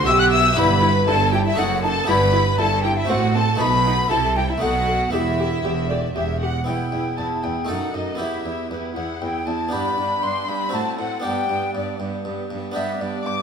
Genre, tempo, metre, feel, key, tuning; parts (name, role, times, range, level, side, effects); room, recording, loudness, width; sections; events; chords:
classical, baroque-style concerto movement with solo episodes; 118 BPM; 3/4; straight; E minor; A4 = 440 Hz
hollow concert flute; melody; 0.0-13.4 s; B4 to F#6; -24 LUFS; left 2 dB
rich symphonic violin section; melody; 0.0-13.4 s; F#4 to F#6; -28 LUFS; left 3 dB
dark chamber violin section; second line; 0.0-13.4 s; E4 to D6; -27 LUFS; left 2 dB
harpsichord; accompaniment; 0.0-13.4 s; E2 to A4; -27 LUFS; right 1 dB
rich studio viola section; accompaniment; 0.0-13.4 s; B3 to A4; -28 LUFS; right 2 dB
rich chamber double bass section; bass; 0.0-6.6 s; E1 to C2; -24 LUFS; right 3 dB
rich symphonic cello section; bass; 0.0-13.3 s; E2 to C3; -28 LUFS; right 2 dB
wet recital hall reverb, RT60 1.4 s; minimal, uncompressed stereo recording; -18 LUFS; side -7 dB against mid
0.0-6.7 A section; 6.7-13.4 B section
0.0 C (rootless); 0.6 Em/G; 1.6 D#dim/F#; 2.1 Em/G; 3.1 F#dim/A; 3.6 B7; 4.1 C; 4.6 B7; 5.1 Em; 7.7 D#dim/F#; 8.2 Em; 9.7 G; 10.7 F#dim/A; 11.2 G